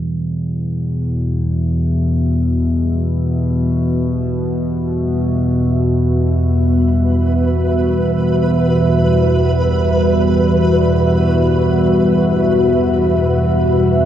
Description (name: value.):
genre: dark ambient drone.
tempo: free time.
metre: none.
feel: none.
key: E minor.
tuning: A4 = 440 Hz.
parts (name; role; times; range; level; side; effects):
deep dark ambient pad; sustained chords; 0.0-14.1 s; G3 to E5; -19 LUFS; equal; chorus, built-in reverb, shimmer reverb.
analog drone; drone; 0.0-14.1 s; E2 to B2; -15 LUFS; equal; chorus.
flickering grainy texture; texture; 7.1-14.1 s; B4; -21 LUFS; right 2 dB; built-in reverb, shimmer reverb.
room: wet huge ambient reverb, RT60 8.1 s.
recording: dreamy mix soaked in reverb.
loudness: -13 LUFS.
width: side -10 dB against mid.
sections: 0.0-14.1 A section.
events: fade-in on ambient pad 0.0-14.1.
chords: 0.0 Emadd9.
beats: free time.